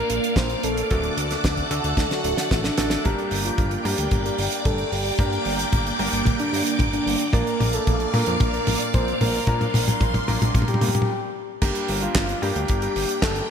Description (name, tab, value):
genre	italo disco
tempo	112 BPM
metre	4/4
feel	straight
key	G minor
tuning	A4 = 439 Hz
part	soft octave-layered synth lead	melody	0.0-13.5 s	D4 to C5	-27 LUFS	left 1 dB	chorus, ping-pong delay
part	phased string machine	sustained chords	0.0-13.5 s	Bb3 to D6	-27 LUFS	right 1 dB	ensemble chorus, phaser
part	bright baby grand piano	stabs	0.0-13.5 s	G2 to D5	-30 LUFS	equal	low-pass filter, ping-pong delay
part	fat analog bass	bass	0.0-13.4 s	D1 to Bb2	-28 LUFS	equal	none
part	damped 70s drum kit	drums	0.1-13.5 s	crash cymbal, handclaps, hi-hat, snare drum, toms	-26 LUFS	equal	gated reverb
part	kick drum	drums	0.4-13.3 s	none	-22 LUFS	equal	none
room	moderate lush hall reverb, RT60 2.1 s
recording	bright 1980s-style digital production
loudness	-20 LUFS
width	side -7 dB against mid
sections	0.0-3.0 A section; 3.0-11.6 B section; 11.6-13.5 C section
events	drum fill 2.0-3.0, 3.0-11.1; stop 11.1-11.6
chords	0.0 Bb; 0.9 D; 3.0 Gm; 7.3 Bb; 11.6 Gm